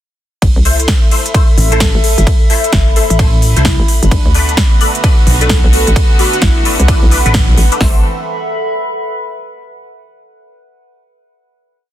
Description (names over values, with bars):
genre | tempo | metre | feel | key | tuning
bass house | 130 BPM | 4/4 | swing 62% on 16ths | A dorian | A4 = 442 Hz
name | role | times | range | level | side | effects
hollow knocking FM bass | bass | 0.4-8.0 s | G1 to D2 | -12 LUFS | equal | overdrive, sidechain pumping
big-room dance drum kit | drums | 0.4-7.9 s | hi-hat, kick drum, snare drum | -11 LUFS | equal | overdrive, small room ambience
big-room dance drum kit | drums | 0.4-7.8 s | hi-hat, ride cymbal, snare drum | -18 LUFS | equal | overdrive, small room ambience
warbly tape-like pad | texture | 0.7-9.6 s | A4 to B5 | -21 LUFS | equal | chorus, built-in reverb, sidechain pumping
band-passed chord stab | stabs | 0.7-8.0 s | A3 to C5 | -20 LUFS | left 4 dB | phaser, ensemble chorus, sidechain pumping, digital delay
pulsing pluck wobble bass | bass | 1.6-7.6 s | A1 to C2 | -12 LUFS | equal | chorus, overdrive, sidechain pumping
airy dreamy lead | melody | 1.7-7.1 s | D4 to A4 | -22 LUFS | equal | chorus, digital delay
rich chamber string section | sustained chords | 4.1-8.0 s | D3 to A4 | -22 LUFS | equal | sidechain pumping
room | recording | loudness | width
digital ambience | dense, heavily limited modern master | -9 LUFS | side -12 dB against mid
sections
0.4-7.8 drop; 7.8-9.7 final chord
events
drop 0.4-7.8; band accent 7.3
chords
0.4 Am; 4.1 Bm7; 7.8 Am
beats
| 0.42 0.88 1.34 1.81 | 2.27 2.73 3.19 3.65 | 4.11 4.58 5.04 5.50 | 5.96 6.42 6.88 7.34 | 7.81 8.27 8.73 9.19